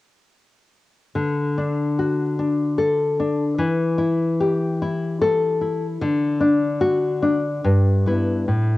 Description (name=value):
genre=romantic piece for solo classical guitar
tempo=74 BPM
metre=3/4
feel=rubato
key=D major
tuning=A4 = 440 Hz
part: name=nylon-string guitar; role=solo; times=1.2-8.8 s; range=G2 to A4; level=-18 LUFS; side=left 2 dB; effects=cassette tape
room=light reverb, small room ambience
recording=home recording on cassette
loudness=-18 LUFS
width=side -17 dB against mid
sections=1.2-8.8 A section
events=none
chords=1.2 D; 3.6 A5/E; 6.0 D; 7.6 Em/G